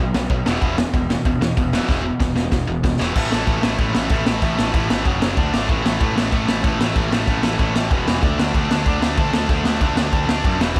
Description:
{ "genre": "punk rock", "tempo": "189 BPM", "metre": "4/4", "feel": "straight", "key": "unclear", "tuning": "A4 = 440 Hz", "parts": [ { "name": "tight distorted guitar", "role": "riff", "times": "0.0-10.8 s", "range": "E2 to D4", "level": "-24 LUFS", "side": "equal", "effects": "distortion" }, { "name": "fuzz picked electric bass", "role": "bass", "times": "0.0-10.8 s", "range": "E1 to F#2", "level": "-27 LUFS", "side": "equal", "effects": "overdrive" }, { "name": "raw garage drum kit", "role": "drums", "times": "0.1-10.8 s", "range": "crash cymbal, kick drum, snare drum", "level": "-22 LUFS", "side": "equal", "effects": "none" } ], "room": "little or no reverb", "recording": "none", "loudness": "-19 LUFS", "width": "mono", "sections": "0.0-3.2 A section; 3.2-10.8 B section", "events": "drum fill 1.9-3.2", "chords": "0.5 E5; 3.2 A5; 5.1 F#5; 5.4 D5; 5.7 A5; 7.9 E5; 8.2 D5" }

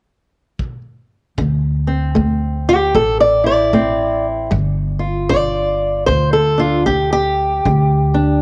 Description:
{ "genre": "acoustic country blues, solo or duo", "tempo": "76 BPM", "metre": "4/4", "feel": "swing 62% on 8ths", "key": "D minor", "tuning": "A4 = 440 Hz", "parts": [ { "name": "kick drum", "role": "drums", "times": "0.6-7.9 s", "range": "none", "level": "-28 LUFS", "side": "equal", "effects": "none" }, { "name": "fingerpicked old ladder-braced acoustic guitar", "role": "melody", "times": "1.4-8.4 s", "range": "A2 to D5", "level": "-17 LUFS", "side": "equal", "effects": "none" }, { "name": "upright bass", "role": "bass", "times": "1.4-8.4 s", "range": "G1 to D2", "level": "-21 LUFS", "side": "equal", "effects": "none" } ], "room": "light reverb, small room reverb", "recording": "none", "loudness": "-16 LUFS", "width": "mono", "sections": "0.0-1.4 A section; 1.4-8.4 B section", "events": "steel-string acoustic guitar solo 1.4-8.4", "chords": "0.0 N.C.; 1.4 Dsus2; 4.5 G5; 7.7 N.C." }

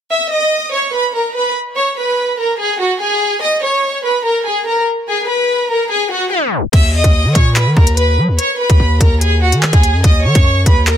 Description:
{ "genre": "hip hop, drill", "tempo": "145 BPM", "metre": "4/4", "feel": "half-time", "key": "Eb phrygian", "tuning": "A4 = 438 Hz", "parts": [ { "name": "warm studio violin section", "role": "melody", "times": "0.1-11.0 s", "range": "Gb4 to E6", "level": "-14 LUFS", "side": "equal", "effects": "tape echo" }, { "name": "hard-hitting 808-style bass", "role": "bass", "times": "6.7-11.0 s", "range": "Eb2 to Gb3", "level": "-13 LUFS", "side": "equal", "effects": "none" }, { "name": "drill drum kit", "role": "drums", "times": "6.7-11.0 s", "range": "crash cymbal, handclaps, hi-hat, kick drum", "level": "-12 LUFS", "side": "equal", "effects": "none" } ], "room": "digital ambience", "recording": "dense, heavily limited modern master, tape stop", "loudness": "-12 LUFS", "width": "side -10 dB against mid", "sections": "0.1-6.7 A section; 6.7-11.0 B section", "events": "tape stop 6.3-6.7", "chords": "0.1 N.C.; 5.1 Abm; 6.7 N.C.; 8.4 Ebm" }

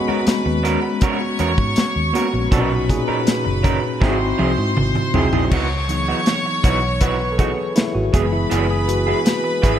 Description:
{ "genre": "lush 1970s-style soul", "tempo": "80 BPM", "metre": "4/4", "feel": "straight", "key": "C# minor from 5.5 s", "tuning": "A4 = 440 Hz", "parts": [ { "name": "rich studio violin section", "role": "second line", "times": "0.0-9.8 s", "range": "B4 to C#6", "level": "-24 LUFS", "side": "left 1 dB", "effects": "tape echo" }, { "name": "tine electric piano", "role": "accompaniment", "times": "0.0-9.8 s", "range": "A#2 to C#5", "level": "-22 LUFS", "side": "left 2 dB", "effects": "medium stereo tremolo" }, { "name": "electric guitar through a small old amp", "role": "riff", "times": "0.1-9.8 s", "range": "E3 to A#4", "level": "-24 LUFS", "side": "right 6 dB", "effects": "none" }, { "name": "vintage muted fingered electric bass", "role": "bass", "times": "0.1-9.8 s", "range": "F#1 to G#2", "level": "-23 LUFS", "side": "equal", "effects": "none" }, { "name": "modern studio drum kit", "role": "drums", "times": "0.3-9.8 s", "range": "crash cymbal, hi-hat, kick drum, snare drum, toms", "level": "-20 LUFS", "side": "equal", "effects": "none" }, { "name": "vibraphone with medium hard mallets", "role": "texture", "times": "5.9-6.8 s", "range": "G#4", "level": "-41 LUFS", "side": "left 3 dB", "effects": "none" } ], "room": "light reverb", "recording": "none", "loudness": "-16 LUFS", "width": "side -10 dB against mid", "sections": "0.0-5.5 A section; 5.5-9.8 B section", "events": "drum fill 4.0-5.5; tine electric piano solo 5.5-9.8", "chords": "0.0 G#m11; 2.5 Bmaj9; 4.0 G#7b13; 5.5 C#m11; 8.1 F#9sus4" }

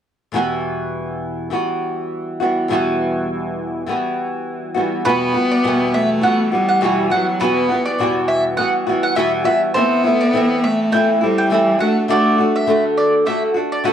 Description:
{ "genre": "pop", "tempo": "102 BPM", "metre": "4/4", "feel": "swing 55% on 16ths", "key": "E minor", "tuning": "A4 = 440 Hz", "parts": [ { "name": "flamenco guitar", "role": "accompaniment", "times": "0.3-13.9 s", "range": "E2 to F#4", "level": "-18 LUFS", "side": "equal", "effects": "double-tracked left and right, cassette tape" }, { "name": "clear cello", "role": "melody", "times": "5.1-12.7 s", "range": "F#3 to B3", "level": "-19 LUFS", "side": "left 1 dB", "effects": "cassette tape, analog delay" }, { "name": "mandolin", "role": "arpeggios", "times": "5.1-13.9 s", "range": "B4 to G5", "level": "-20 LUFS", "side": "right 1 dB", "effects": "cassette tape" } ], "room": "moderate studio reverb, RT60 0.6 s", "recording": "home recording on cassette", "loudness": "-15 LUFS", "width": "side -9 dB against mid", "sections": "0.3-5.0 A section; 5.0-13.9 B section", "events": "none", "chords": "0.3 Emadd9; 9.8 Am/E; 11.8 D" }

